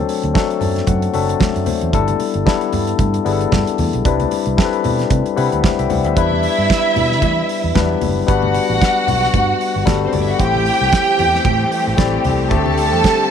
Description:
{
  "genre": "disco",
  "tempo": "114 BPM",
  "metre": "4/4",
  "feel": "swing 56% on 16ths",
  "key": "unclear",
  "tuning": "A4 = 442 Hz",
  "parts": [
    { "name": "barky tine electric piano", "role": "accompaniment", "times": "0.0-13.3 s", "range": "F#3 to A5", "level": "-19 LUFS", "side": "left 9 dB", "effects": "none" },
    { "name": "damped 70s drum kit", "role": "drums", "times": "0.1-13.2 s", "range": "hi-hat, kick drum, snare drum", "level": "-20 LUFS", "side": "right 3 dB", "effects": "none" },
    { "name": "fingered electric bass", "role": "bass", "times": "0.2-13.0 s", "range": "F#1 to E3", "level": "-20 LUFS", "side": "right 3 dB", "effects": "none" },
    { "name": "congas", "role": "percussion", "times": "0.6-12.8 s", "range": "none", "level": "-26 LUFS", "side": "left 6 dB", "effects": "none" },
    { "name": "rich studio string section", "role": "second line", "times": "6.2-13.3 s", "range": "C4 to A5", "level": "-17 LUFS", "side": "right 2 dB", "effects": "none" },
    { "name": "clear studio string section", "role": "sustained chords", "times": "10.4-13.3 s", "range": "D3 to G4", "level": "-23 LUFS", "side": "equal", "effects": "none" }
  ],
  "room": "light reverb, small room ambience",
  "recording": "1960s-style stereo",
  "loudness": "-14 LUFS",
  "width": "side -8 dB against mid",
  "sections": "0.0-6.2 A section; 6.2-13.3 B section",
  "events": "tine electric piano fill 0.3-1.9, 5.1-6.2",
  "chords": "0.0 D7; 1.9 G69; 4.1 Cmaj9; 6.2 Em7; 8.3 Gmaj7; 10.4 Am7; 12.5 D7sus4",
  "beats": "0.35 0.88 1.41 | 1.94 2.46 2.99 3.52 | 4.05 4.58 5.11 5.64 | 6.17 6.70 7.22 7.75 | 8.28 8.81 9.34 9.87 | 10.40 10.92 11.45 11.98 | 12.51 13.04"
}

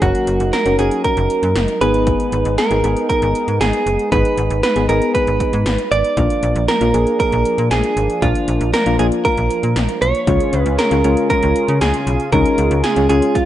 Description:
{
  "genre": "synth-pop",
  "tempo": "117 BPM",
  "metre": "4/4",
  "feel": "straight",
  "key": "unclear",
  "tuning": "A4 = 440 Hz",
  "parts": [
    { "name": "direct-recorded clean electric guitar", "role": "melody", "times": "0.0-13.5 s", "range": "F4 to D5", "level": "-18 LUFS", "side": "right 3 dB", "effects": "none" },
    { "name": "soft electric-piano-like synth keys", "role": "accompaniment", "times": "0.0-13.5 s", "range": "Ab3 to Bb4", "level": "-20 LUFS", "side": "left 2 dB", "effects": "chorus" },
    { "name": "warm analog pad", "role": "sustained chords", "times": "0.0-13.5 s", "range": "Db3 to Ab4", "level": "-24 LUFS", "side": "equal", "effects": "chorus" },
    { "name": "slap-like FM bass", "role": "bass", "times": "0.0-13.2 s", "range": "Gb1 to Db3", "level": "-19 LUFS", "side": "equal", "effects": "none" },
    { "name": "80s electronic pad drums", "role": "drums", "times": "0.0-13.5 s", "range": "hi-hat, kick drum, snare drum", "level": "-23 LUFS", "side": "left 1 dB", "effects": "overdrive" }
  ],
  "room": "light reverb, digital ambience",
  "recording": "rough home demo mix, nothing above 11.0 kHz",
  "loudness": "-14 LUFS",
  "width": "side -12 dB against mid",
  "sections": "0.0-13.5 A section",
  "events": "none",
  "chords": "0.0 Gb; 1.8 Abm; 6.2 Bb; 10.3 Db",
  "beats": "| 0.02 0.53 1.04 1.56 | 2.07 2.58 3.09 3.61 | 4.12 4.63 5.15 5.66 | 6.17 6.68 7.20 7.71 | 8.22 8.73 9.25 9.76 | 10.27 10.79 11.30 11.81 | 12.32 12.84 13.35"
}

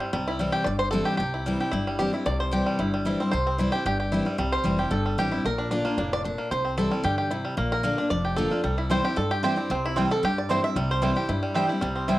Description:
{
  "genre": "bluegrass",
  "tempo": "226 BPM",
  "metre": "4/4",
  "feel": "straight",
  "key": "C mixolydian",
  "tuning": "A4 = 439 Hz",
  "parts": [
    { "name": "bluegrass banjo", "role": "melody", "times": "0.0-12.2 s", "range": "G3 to E5", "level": "-27 LUFS", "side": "right 1 dB", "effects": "none" },
    { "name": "picked steel-string acoustic guitar", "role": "accompaniment", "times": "0.1-12.2 s", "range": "F2 to F4", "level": "-27 LUFS", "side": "left 2 dB", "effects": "none" },
    { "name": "upright bass", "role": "bass", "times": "0.1-12.2 s", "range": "F1 to G2", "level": "-30 LUFS", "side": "equal", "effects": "none" },
    { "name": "mandolin", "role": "stabs", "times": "8.9-12.2 s", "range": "C4 to G5", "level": "-29 LUFS", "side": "right 4 dB", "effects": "none" }
  ],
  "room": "moderate spring reverb, RT60 1.1 s, small room ambience",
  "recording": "home recording on cassette",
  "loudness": "-23 LUFS",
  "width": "side -16 dB against mid",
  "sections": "0.1-12.2 A section",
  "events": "five-string banjo solo 0.1-12.2",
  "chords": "0.1 C; 5.5 Bb; 6.5 C; 7.6 Bb; 8.6 C",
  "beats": "| 0.14 0.40 0.67 0.93 | 1.20 1.47 1.73 2.00 | 2.26 2.53 2.80 3.06 | 3.33 3.59 3.86 4.12 | 4.39 4.66 4.92 5.19 | 5.45 5.72 5.99 6.25 | 6.52 6.78 7.05 7.31 | 7.58 7.84 8.11 8.38 | 8.64 8.91 9.17 9.44 | 9.70 9.97 10.23 10.50 | 10.76 11.03 11.29 11.56 | 11.82 12.09"
}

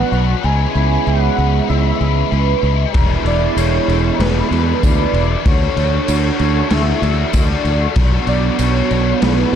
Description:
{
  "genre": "rock, shoegaze and dream pop",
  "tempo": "96 BPM",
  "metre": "4/4",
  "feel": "straight",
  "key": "E mixolydian",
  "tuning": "A4 = 440 Hz",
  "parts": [
    { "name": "warm velvety synth lead", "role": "melody", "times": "0.0-9.6 s", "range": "B4 to G#5", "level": "-23 LUFS", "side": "left 1 dB", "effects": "chorus, tape echo" },
    { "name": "picked twelve-string acoustic guitar", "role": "arpeggios", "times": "0.0-9.6 s", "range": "E4 to D5", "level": "-27 LUFS", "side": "right 11 dB", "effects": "wide subtle chorus, tape echo" },
    { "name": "biting overdriven guitar", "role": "riff", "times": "0.0-9.6 s", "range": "E2 to F#4", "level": "-22 LUFS", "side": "left 13 dB", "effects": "analog chorus" },
    { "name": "electric guitar through a small old amp", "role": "riff", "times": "0.0-9.6 s", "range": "E2 to C#5", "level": "-22 LUFS", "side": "right 13 dB", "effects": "reverse reverb" },
    { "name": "modern bright fingered electric bass", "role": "bass", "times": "0.1-9.6 s", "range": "E1 to E2", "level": "-16 LUFS", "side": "equal", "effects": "none" },
    { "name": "raw garage drum kit", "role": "drums", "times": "2.9-9.4 s", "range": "crash cymbal, kick drum, snare drum", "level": "-19 LUFS", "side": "left 1 dB", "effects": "none" },
    { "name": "tambourine", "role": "percussion", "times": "3.6-8.7 s", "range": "none", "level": "-33 LUFS", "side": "right 20 dB", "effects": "none" }
  ],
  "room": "small room reverb",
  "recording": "dark, warm production",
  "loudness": "-13 LUFS",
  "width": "side -9 dB against mid",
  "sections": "0.0-9.6 A section",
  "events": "none",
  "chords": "0.4 C#m7; 3.0 E7; 5.5 Dmaj7; 8.0 Bmadd9",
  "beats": "| 0.45 1.07 1.70 2.32 | 2.95 3.58 4.20 4.83 | 5.46 6.08 6.71 7.34 | 7.97 8.60 9.22"
}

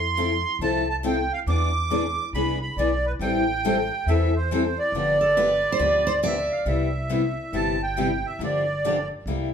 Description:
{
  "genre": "acoustic string swing (jazz manouche)",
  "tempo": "139 BPM",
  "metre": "4/4",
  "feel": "swing 63% on 8ths",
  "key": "C major",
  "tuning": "A4 = 440 Hz",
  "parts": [
    { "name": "accordion", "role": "melody", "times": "0.0-9.1 s", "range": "B4 to D6", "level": "-24 LUFS", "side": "right 2 dB", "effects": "light tremolo tuning" },
    { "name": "upright bass", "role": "bass", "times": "0.0-9.5 s", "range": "G1 to F2", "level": "-28 LUFS", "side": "equal", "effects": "none" },
    { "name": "picked steel-string acoustic guitar", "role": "accompaniment", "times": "0.2-9.5 s", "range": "C3 to A4", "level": "-26 LUFS", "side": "left 4 dB", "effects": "none" },
    { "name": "picked steel-string acoustic guitar", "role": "second line", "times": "5.2-6.6 s", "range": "A4 to D5", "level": "-27 LUFS", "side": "right 2 dB", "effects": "none" }
  ],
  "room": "moderate large studio reverb, RT60 0.9 s",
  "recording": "band playing live in one room",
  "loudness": "-21 LUFS",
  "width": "side -7 dB against mid",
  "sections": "0.0-6.7 A section; 6.7-9.5 B section",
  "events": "none",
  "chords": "0.0 Fmaj7; 1.5 E7; 3.2 Am7; 4.9 G7; 6.7 Cmaj7; 8.4 Gm7",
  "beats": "0.17 0.60 1.04 | 1.47 1.90 2.33 2.77 | 3.20 3.63 4.07 4.50 | 4.93 5.36 5.80 6.23 | 6.66 7.10 7.53 7.96 | 8.40 8.83 9.27"
}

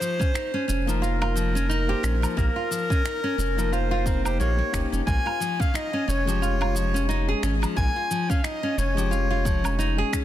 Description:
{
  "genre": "organic downtempo",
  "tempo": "89 BPM",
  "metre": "4/4",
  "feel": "swing 57% on 16ths",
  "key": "Bb dorian",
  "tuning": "A4 = 440 Hz",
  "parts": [
    { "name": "clear clarinet", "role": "melody", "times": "0.0-10.1 s", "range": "Bb4 to Ab5", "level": "-29 LUFS", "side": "left 1 dB", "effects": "digital delay" },
    { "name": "nylon-string guitar", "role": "arpeggios", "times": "0.0-10.2 s", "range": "F3 to Ab4", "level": "-28 LUFS", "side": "equal", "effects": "ping-pong delay" },
    { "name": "electronic shaker, finger snaps and woodblock", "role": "drums", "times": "0.0-10.2 s", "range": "none", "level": "-34 LUFS", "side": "right 1 dB", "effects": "soft clipping on snare" },
    { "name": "electronic kick drum", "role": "drums", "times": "0.2-10.2 s", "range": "none", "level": "-25 LUFS", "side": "equal", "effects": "none" },
    { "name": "round analog bass", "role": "bass", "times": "0.7-10.0 s", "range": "F1 to Bb1", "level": "-25 LUFS", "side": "equal", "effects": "none" },
    { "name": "tine electric piano", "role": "accompaniment", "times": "0.9-10.2 s", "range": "Ab3 to C5", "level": "-33 LUFS", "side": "moving between left 6 dB and equal", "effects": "auto-pan, sidechain pumping, ping-pong delay" }
  ],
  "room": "light reverb, digital ambience",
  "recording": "dense, heavily limited modern master",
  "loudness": "-22 LUFS",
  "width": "side -12 dB against mid",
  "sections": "0.0-10.2 A section",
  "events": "none",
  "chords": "0.0 Ebadd9; 5.1 Bbm7 (rootless)",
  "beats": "0.35 1.03 1.70 | 2.37 3.05 3.72 4.40 | 5.07 5.75 6.42 7.09 | 7.77 8.44 9.12 9.79"
}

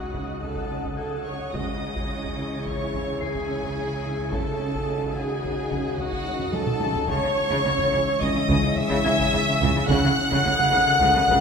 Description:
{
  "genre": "cinematic, suspense film score",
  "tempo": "108 BPM",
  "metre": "5/4",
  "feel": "straight",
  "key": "C# minor",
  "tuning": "A4 = 438 Hz",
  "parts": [
    { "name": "warm chamber violin section", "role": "melody", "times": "0.0-11.4 s", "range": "F#5 to F#6", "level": "-31 LUFS", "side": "left 1 dB", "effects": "none" },
    { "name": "dark clarinet", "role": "second line", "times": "0.0-11.4 s", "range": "F#4 to F#5", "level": "-28 LUFS", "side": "left 1 dB", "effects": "none" },
    { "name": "rich chamber violin section", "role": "second line", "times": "0.0-11.4 s", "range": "F#4 to F#5", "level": "-34 LUFS", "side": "left 2 dB", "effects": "none" },
    { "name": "rich chamber viola section", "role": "accompaniment", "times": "0.0-11.4 s", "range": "F#4 to F#5", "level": "-29 LUFS", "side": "right 2 dB", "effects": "none" },
    { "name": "dark French horn section", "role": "sustained chords", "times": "0.0-11.4 s", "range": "D#3 to A4", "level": "-33 LUFS", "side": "left 5 dB", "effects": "none" },
    { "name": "wind-like tuned noise texture", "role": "sustained chords", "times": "0.0-11.4 s", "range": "D#4 to G#5", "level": "-35 LUFS", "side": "left 1 dB", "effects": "built-in reverb" },
    { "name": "warm chamber cello section", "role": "riff", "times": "0.0-11.4 s", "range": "C#3 to C#4", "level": "-32 LUFS", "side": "right 2 dB", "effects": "none" },
    { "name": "dark studio double bass section", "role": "bass", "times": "0.0-11.3 s", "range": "C#2", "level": "-31 LUFS", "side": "right 2 dB", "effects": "none" },
    { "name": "warm chamber cello section", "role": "bass", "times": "0.0-11.3 s", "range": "C#3", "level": "-30 LUFS", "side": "equal", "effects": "none" },
    { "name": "taiko ensemble", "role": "drums", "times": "0.1-11.4 s", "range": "none", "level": "-34 LUFS", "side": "equal", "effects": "none" },
    { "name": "concert harp", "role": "texture", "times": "1.0-11.4 s", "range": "G#5 to B#6", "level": "-35 LUFS", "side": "left 6 dB", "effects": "none" },
    { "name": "timpani", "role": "percussion", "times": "1.5-5.1 s", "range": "C#3", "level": "-38 LUFS", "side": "equal", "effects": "none" }
  ],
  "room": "wet scoring stage reverb, RT60 1.9 s",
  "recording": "minimal, uncompressed stereo recording",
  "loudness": "-21 LUFS",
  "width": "side -6 dB against mid",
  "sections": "0.0-11.4 A section",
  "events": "drum fill 6.4-7.1",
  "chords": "0.0 D#dim/C#; 1.5 C#m; 4.3 D#dim/C#; 7.1 C#m; 9.9 D#dim/C#",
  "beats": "0.42 0.98 | 1.54 2.10 2.66 3.21 3.77 | 4.33 4.88 5.44 5.99 6.54 | 7.10 7.66 8.21 8.77 9.33 | 9.89 10.45 11.01"
}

